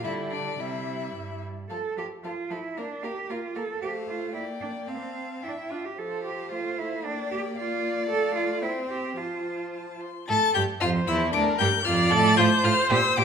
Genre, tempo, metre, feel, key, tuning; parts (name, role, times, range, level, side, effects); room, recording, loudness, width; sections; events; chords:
quick classical-period movement for string quartet; 107-117 BPM; 2/4; rubato; F major; A4 = 438 Hz
rich violin; melody; 0.0-13.2 s; D5 to A6; -31 LUFS; left 9 dB
rich violin; second line; 0.0-13.2 s; D4 to F5; -30 LUFS; left 2 dB
rich viola; accompaniment; 0.0-13.2 s; F3 to D5; -31 LUFS; right 2 dB
clear cello; bass; 0.0-13.2 s; D2 to A4; -29 LUFS; right 4 dB
wet recital hall reverb, RT60 1.3 s; minimal, uncompressed stereo recording; -24 LUFS; side -6 dB against mid
0.0-1.7 A section; 1.7-10.3 A section; 10.3-13.2 A section
0.0 G5; 0.6 C; 1.7 F; 2.8 Bb; 3.8 F/A; 4.3 Gm/Bb; 4.9 F; 5.4 Dsus24; 6.0 F; 7.0 Bb; 8.1 F/A; 8.6 C; 9.2 F; 11.3 Bb/D; 12.4 F